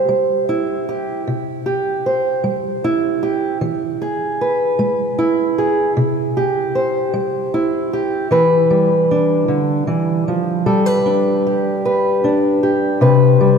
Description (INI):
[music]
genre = folk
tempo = 51 BPM (dotted quarters)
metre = 6/8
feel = straight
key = C major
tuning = A4 = 440 Hz
[part]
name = fingerpicked old ladder-braced acoustic guitar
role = solo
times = 0.0-13.6 s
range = C3 to C5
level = -14 LUFS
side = equal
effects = none
[sound]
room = wet church reverb, RT60 3.7 s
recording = recorded in a church or concert hall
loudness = -15 LUFS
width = side -6 dB against mid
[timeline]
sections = 0.0-8.3 A section; 8.3-13.6 B section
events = none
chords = 0.0 C; 3.6 E; 6.0 C; 8.3 Em7; 10.7 G; 13.0 Cmaj7(no3)